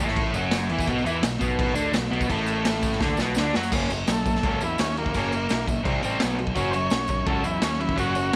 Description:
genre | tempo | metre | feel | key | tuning
garage rock duo or trio | 169 BPM | 4/4 | straight | unclear | A4 = 440 Hz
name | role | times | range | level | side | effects
crunchy overdriven guitar | riff | 0.0-8.4 s | F#2 to F#4 | -29 LUFS | equal | none
fuzz fingered electric bass | bass | 0.0-8.4 s | F#1 to F#2 | -33 LUFS | equal | overdrive
tambourine | percussion | 0.0-8.4 s | none | -44 LUFS | equal | none
raw garage drum kit | drums | 0.1-8.4 s | crash cymbal, kick drum, snare drum | -29 LUFS | equal | none
overdriven combo organ | melody | 4.1-8.4 s | A#3 to C#5 | -30 LUFS | equal | none
room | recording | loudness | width
light reverb, small room reverb | none | -24 LUFS | mono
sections
0.0-3.7 A section; 3.7-8.4 B section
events
drum fill 3.0-3.7; transistor combo organ solo 3.7-8.4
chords
0.0 F#m; 0.9 B5; 3.7 F#; 5.9 C5; 6.2 B5; 6.6 F#5

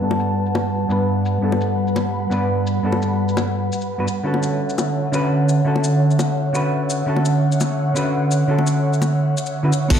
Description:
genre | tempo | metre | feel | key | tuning
liquid drum and bass | 170 BPM | 4/4 | straight | unclear | A4 = 440 Hz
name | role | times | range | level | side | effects
hollow-body jazz guitar | accompaniment | 0.0-10.0 s | G2 to B4 | -20 LUFS | equal | low-pass filter, ping-pong delay
airy breathy pad | sustained chords | 0.0-10.0 s | D3 to B5 | -21 LUFS | right 1 dB | chorus, sidechain pumping
bongos | percussion | 0.1-9.1 s | none | -26 LUFS | left 4 dB | none
garage drum kit | drums | 0.2-10.0 s | crash cymbal, hi-hat, shaker | -31 LUFS | left 4 dB | low-pass filter on hats, low-pass filter on snare, low-pass filter on cymbals, low-pass filter on perc
dark detuned saw bass | bass | 9.9-10.0 s | G1 | -22 LUFS | equal | none
electronic kick drum | drums | 9.9-10.0 s | none | -15 LUFS | equal | none
room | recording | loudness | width
light reverb, digital ambience | played on a big sound system in a bare room, large studio reverb | -17 LUFS | side -8 dB against mid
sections
0.0-9.9 A section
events
filter sweep on hollow-body jazz guitar 0.0-9.9; filter sweep on analog synth pad 0.0-9.9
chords
0.0 Gmaj9; 4.3 Dmaj9

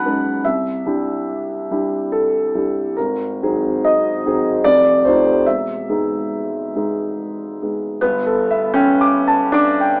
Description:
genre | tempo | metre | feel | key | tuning
classical, impressionist solo piano | 71 BPM | 3/4 | uneven beats, rubato | unclear | A4 = 440 Hz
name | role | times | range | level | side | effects
clear concert grand piano | solo | 0.0-10.0 s | E1 to D6 | -15 LUFS | equal | none
room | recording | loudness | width
light reverb | AM radio sound | -15 LUFS | side -33 dB against mid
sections
0.0-8.0 A section; 8.0-10.0 B section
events
none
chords
0.4 Cadd9; 3.0 G#9; 4.6 F9; 5.4 Emaj7; 8.0 G69

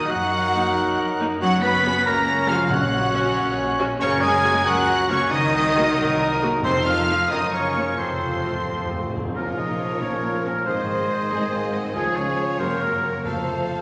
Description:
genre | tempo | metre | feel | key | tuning
classical | 92 BPM (dotted quarters) | 6/8 | straight | Bb minor from 4.0 s | A4 = 440 Hz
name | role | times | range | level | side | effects
rich studio violin section | melody | 0.0-13.8 s | F4 to Cb7 | -32 LUFS | equal | none
hollow flute section | second line | 0.0-13.8 s | Ab4 to Cb6 | -36 LUFS | equal | none
mellow clarinet | second line | 0.0-13.8 s | C4 to C5 | -30 LUFS | equal | none
rich symphonic violin section | second line | 0.0-13.8 s | Ab4 to Cb6 | -32 LUFS | equal | none
warm oboe | second line | 0.0-13.8 s | Ab4 to Cb6 | -29 LUFS | equal | none
mellow French horn section | sustained chords | 0.0-13.8 s | Ab3 to Cb5 | -35 LUFS | equal | none
mellow trombone section | sustained chords | 0.0-13.8 s | Db3 to F4 | -31 LUFS | equal | none
concert harp | arpeggios | 0.0-13.8 s | F2 to Eb6 | -35 LUFS | equal | none
warm trumpet | stabs | 0.0-9.1 s | A4 to Db5 | -32 LUFS | equal | none
warm symphonic cello section | bass | 0.0-13.6 s | Db2 to Cb4 | -33 LUFS | equal | none
rich symphonic double bass section | bass | 0.1-13.5 s | F1 to Gb2 | -36 LUFS | equal | none
rich symphonic viola section | accompaniment | 0.5-13.8 s | F3 to C5 | -36 LUFS | equal | none
timpani | percussion | 2.7-3.3, 6.6-9.3, 13.2-13.8 s | F2 to Bb2 | -36 LUFS | equal | none
dark bassoon | accompaniment | 9.4-13.8 s | Eb3 to Gb3 | -33 LUFS | equal | none
room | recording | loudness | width
wet scoring stage reverb, RT60 1.6 s | none | -22 LUFS | mono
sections
0.0-9.4 A section; 9.4-13.8 B section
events
timpani fill 8.0-9.4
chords
0.1 Ebm/Gb; 1.4 Gb; 2.7 Gb/Bb; 4.0 Gb; 5.3 Cm7b5; 6.6 F7; 7.3 Gbmaj7; 8.0 F; 9.4 Bbm; 10.7 Ab; 11.9 Db; 12.6 Gb; 13.3 F

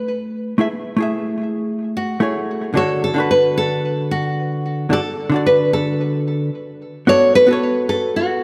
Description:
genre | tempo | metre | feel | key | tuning
chillout | 111 BPM | 4/4 | straight | unclear | A4 = 440 Hz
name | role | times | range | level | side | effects
nylon-string guitar | melody | 0.0-8.4 s | F#4 to C#5 | -20 LUFS | equal | digital delay
hollow-body jazz guitar | accompaniment | 0.0-8.4 s | D3 to G#5 | -22 LUFS | equal | delay
room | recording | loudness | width
moderate lush hall reverb, RT60 2.3 s | none | -18 LUFS | mono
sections
0.0-7.1 A section; 7.1-8.4 B section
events
break 6.0-7.1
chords
0.0 Amaj7; 2.8 D; 7.1 Bm7

